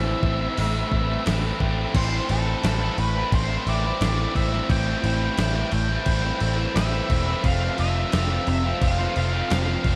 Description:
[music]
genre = rock, shoegaze and dream pop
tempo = 87 BPM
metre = 4/4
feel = straight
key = A minor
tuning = A4 = 440 Hz
[part]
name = octave-fuzz lead guitar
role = melody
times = 0.0-10.0 s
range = A4 to G5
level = -33 LUFS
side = equal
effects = distortion, delay
[part]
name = biting overdriven guitar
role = riff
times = 0.0-10.0 s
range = F2 to F4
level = -28 LUFS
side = equal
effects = subtle chorus
[part]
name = vintage muted picked electric bass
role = bass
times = 0.0-10.0 s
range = E1 to A1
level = -27 LUFS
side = equal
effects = none
[part]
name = gated 80s digital drum machine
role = drums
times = 0.2-10.0 s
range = crash cymbal, hi-hat, kick drum, snare drum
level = -30 LUFS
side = equal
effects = gated reverb, gated reverb snare
[sound]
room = moderate lush hall reverb, RT60 1.8 s, digital ambience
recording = dreamy mix soaked in reverb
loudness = -23 LUFS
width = mono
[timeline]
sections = 0.0-1.9 A section; 1.9-10.0 B section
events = none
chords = 0.0 Am; 1.9 Am7; 7.4 Fmaj7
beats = 0.57 1.26 | 1.95 2.63 3.32 4.01 | 4.70 5.38 6.07 6.76 | 7.44 8.13 8.82 9.51

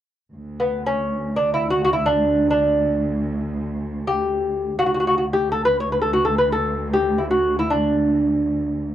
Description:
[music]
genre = persian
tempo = free time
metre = none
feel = none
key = D dastgah mahur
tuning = A4 = 440 Hz
[part]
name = warm chamber cello section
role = drone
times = 0.3-8.9 s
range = D2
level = -26 LUFS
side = equal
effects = none
[part]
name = lute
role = melody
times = 0.6-8.8 s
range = B3 to C#5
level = -19 LUFS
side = equal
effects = none
[sound]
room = small room ambience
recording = dry, close 1970s-style studio recording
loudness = -18 LUFS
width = side -11 dB against mid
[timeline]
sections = 0.3-8.9 A section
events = none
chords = none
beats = free time

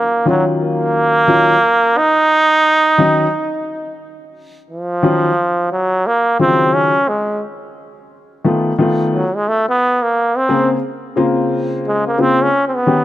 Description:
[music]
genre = hip hop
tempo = 88 BPM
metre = 4/4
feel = swing 61% on 16ths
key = Eb dorian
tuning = A4 = 441 Hz
[part]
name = trombone with straight mute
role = melody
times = 0.0-13.0 s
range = F3 to Eb4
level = -14 LUFS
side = right 1 dB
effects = none
[part]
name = dark upright piano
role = accompaniment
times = 0.3-13.0 s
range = Db3 to Ab4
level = -16 LUFS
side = left 2 dB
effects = none
[sound]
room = light reverb, small room reverb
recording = none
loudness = -12 LUFS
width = side -13 dB against mid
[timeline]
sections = 0.0-4.7 A section; 4.7-13.0 B section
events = trombone solo 4.7-13.0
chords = 0.0 Ebm9; 7.4 B7#11/D#; 10.2 Bbmadd9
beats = 0.61 1.29 | 1.97 2.65 3.34 4.02 | 4.70 5.38 6.06 6.75 | 7.43 8.11 8.79 9.47 | 10.15 10.84 11.52 12.20 | 12.88

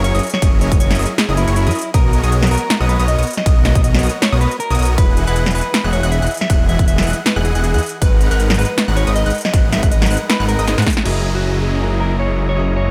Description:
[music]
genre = future bass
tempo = 158 BPM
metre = 4/4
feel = swing 55% on 16ths, half-time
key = unclear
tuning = A4 = 440 Hz
[part]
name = mellow electric guitar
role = melody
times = 0.0-12.9 s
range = E4 to E5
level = -26 LUFS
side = equal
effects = sidechain pumping, digital delay
[part]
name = unison pluck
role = arpeggios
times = 0.0-10.8 s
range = C#6 to F#6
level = -31 LUFS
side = equal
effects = sidechain pumping, tape echo
[part]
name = supersaw chords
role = riff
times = 0.0-12.9 s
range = E3 to A#5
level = -25 LUFS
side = equal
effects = sidechain pumping, low-pass filter
[part]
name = detuned saw bass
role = bass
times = 0.0-12.9 s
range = E1 to G#2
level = -19 LUFS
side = equal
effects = chorus, sidechain pumping
[part]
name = big-room dance drum kit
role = drums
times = 0.0-11.1 s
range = crash cymbal, hi-hat, ride cymbal, snare drum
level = -23 LUFS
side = equal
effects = none
[part]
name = electronic kick drum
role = drums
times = 0.4-10.9 s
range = none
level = -17 LUFS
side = equal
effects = none
[part]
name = clear baby grand piano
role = accompaniment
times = 11.0-12.9 s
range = F#3 to D#5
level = -28 LUFS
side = equal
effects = sidechain pumping
[part]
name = warm chamber string section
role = sustained chords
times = 11.1-12.9 s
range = G#3 to A#3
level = -36 LUFS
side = equal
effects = none
[part]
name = downlifter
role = sound effects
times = 11.1-12.9 s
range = none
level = -32 LUFS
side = equal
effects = none
[sound]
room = little or no reverb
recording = none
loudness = -16 LUFS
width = mono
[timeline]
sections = 0.0-11.1 A section; 11.1-12.9 B section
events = drop 0.0-11.1; drum fill 10.7-11.1; band accent 11.0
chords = 0.0 F#13; 1.9 Bmaj7; 5.0 Emaj9; 7.8 G#m7; 11.1 F#13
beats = 0.04 | 0.42 0.80 1.18 1.56 | 1.94 2.32 2.70 3.08 | 3.46 3.84 4.22 4.60 | 4.98 5.36 5.74 6.12 | 6.50 6.88 7.26 7.64 | 8.02 8.40 8.78 9.16 | 9.54 9.92 10.30 10.68 | 11.05 11.44 11.81 12.19 | 12.57

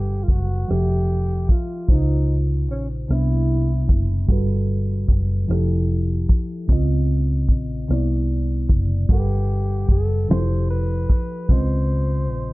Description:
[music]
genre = slow six-eight R&B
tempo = 50 BPM (dotted quarters)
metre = 6/8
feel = straight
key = unclear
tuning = A4 = 437 Hz
[part]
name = breathy tenor saxophone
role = melody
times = 0.0-4.0, 9.1-12.5 s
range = C#4 to C5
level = -30 LUFS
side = equal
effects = plate reverb, tape echo
[part]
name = mellow FM electric piano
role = accompaniment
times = 0.0-12.5 s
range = C3 to F#5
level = -25 LUFS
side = equal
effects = chorus, plate reverb
[part]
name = vintage muted fingered electric bass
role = bass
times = 0.0-12.5 s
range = F1 to C#2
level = -20 LUFS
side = equal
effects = none
[part]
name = damped 70s drum kit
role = drums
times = 0.3-12.5 s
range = hi-hat, kick drum, rim click, snare drum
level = -18 LUFS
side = equal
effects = none
[sound]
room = little or no reverb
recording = low-pass filter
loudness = -18 LUFS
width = side -20 dB against mid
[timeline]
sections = 0.0-12.5 A section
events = filter sweep 0.0-12.5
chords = 0.0 Gmaj9; 0.7 Fmaj9; 1.9 C#maj9; 3.1 Cmaj9; 4.3 Gmaj9; 5.5 Fmaj9; 6.7 C#maj9; 7.9 Cmaj9; 9.1 Gmaj9; 10.3 Fmaj9; 11.5 C#maj9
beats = 0.69 | 1.89 3.09 | 4.29 5.49 | 6.69 7.89 | 9.09 10.29 | 11.49

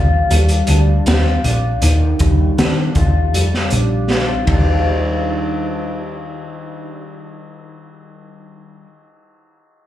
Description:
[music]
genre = indie pop, bedroom pop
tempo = 79 BPM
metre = 4/4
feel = straight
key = Eb major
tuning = A4 = 441 Hz
[part]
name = electric guitar through a small old amp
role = accompaniment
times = 0.0-8.9 s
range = Eb3 to F4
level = -21 LUFS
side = left 2 dB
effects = analog chorus, warbly pitch drift, slapback echo
[part]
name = vintage muted picked electric bass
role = bass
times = 0.0-8.8 s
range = Bb1 to Eb3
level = -16 LUFS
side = equal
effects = none
[part]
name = raw garage drum kit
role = drums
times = 0.3-4.7 s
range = hi-hat, kick drum, ride cymbal, snare drum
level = -19 LUFS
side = equal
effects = none
[sound]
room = light reverb, small room reverb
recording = live gig heard through the venue's PA, club reverb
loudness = -13 LUFS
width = side -12 dB against mid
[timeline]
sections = 0.0-4.9 A section; 4.9-7.9 B section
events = drum fill 4.1-4.9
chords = 0.0 Ebmaj9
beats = 0.30 1.06 | 1.82 2.58 3.34 4.09 | 4.86 5.62 6.38 7.14

